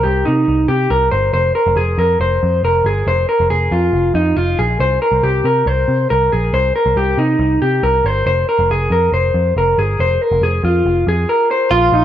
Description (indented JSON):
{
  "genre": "indie pop",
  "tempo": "139 BPM",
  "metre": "4/4",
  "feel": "straight",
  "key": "F minor",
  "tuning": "A4 = 440 Hz",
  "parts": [
    { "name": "electric guitar through a small old amp", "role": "arpeggios", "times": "0.0-12.0 s", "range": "Eb4 to C5", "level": "-14 LUFS", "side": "equal", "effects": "tube saturation, spring reverb, analog delay" },
    { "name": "vintage muted picked electric bass", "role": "bass", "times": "0.0-12.0 s", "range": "F1 to C3", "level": "-17 LUFS", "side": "equal", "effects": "none" },
    { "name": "clean electric guitar", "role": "melody", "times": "11.7-12.0 s", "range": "F4", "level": "-13 LUFS", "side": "right 4 dB", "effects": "none" }
  ],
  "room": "moderate studio reverb, RT60 0.5 s",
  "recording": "none",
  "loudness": "-13 LUFS",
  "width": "side -11 dB against mid",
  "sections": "0.0-11.7 A section",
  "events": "none",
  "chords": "0.0 Cm; 1.3 Fm; 4.8 C5; 8.3 Fm"
}